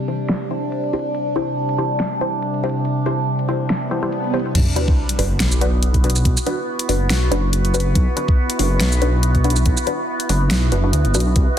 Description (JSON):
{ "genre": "deep dubstep", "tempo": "141 BPM", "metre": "4/4", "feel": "swing 55% on 16ths, half-time", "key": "B phrygian", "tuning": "A4 = 441 Hz", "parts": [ { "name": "overtone-sweeping drone", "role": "sustained chords", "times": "0.0-11.6 s", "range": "C3 to B4", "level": "-23 LUFS", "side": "equal", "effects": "chorus, built-in reverb, phaser" }, { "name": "filtered dub chord stab", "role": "stabs", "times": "0.1-11.3 s", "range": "D4 to C5", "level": "-25 LUFS", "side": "left 2 dB", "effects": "phaser, dub echo" }, { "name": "dubstep drum kit", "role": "drums", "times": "0.1-11.5 s", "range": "crash cymbal, hi-hat, shaker, snare drum", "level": "-24 LUFS", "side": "equal", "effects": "overdrive, low-pass filter on hats, low-pass filter on snare, low-pass filter on cymbals, low-pass filter on perc" }, { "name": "swell and sub drop", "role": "sound effects", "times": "3.9-6.3 s", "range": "none", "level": "-25 LUFS", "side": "right 1 dB", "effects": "none" }, { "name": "dark detuned saw bass", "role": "bass", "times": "4.5-11.5 s", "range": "F#1 to D2", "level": "-18 LUFS", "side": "equal", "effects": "none" }, { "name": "electronic kick drum", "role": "drums", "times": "4.5-11.5 s", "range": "none", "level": "-17 LUFS", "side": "equal", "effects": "overdrive" }, { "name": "wind-like tuned noise texture", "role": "texture", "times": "5.1-11.6 s", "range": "E4", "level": "-33 LUFS", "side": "right 7 dB", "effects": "built-in reverb" } ], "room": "light reverb, digital ambience", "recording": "dense, heavily limited modern master", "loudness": "-16 LUFS", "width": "side -10 dB against mid", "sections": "0.0-4.6 A section; 4.6-11.6 B section", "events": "filter sweep on synth stab 0.0-4.6; swell 3.9-4.6; drop 4.6-11.6; impact 4.6-6.3", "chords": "0.0 C; 4.6 Bm" }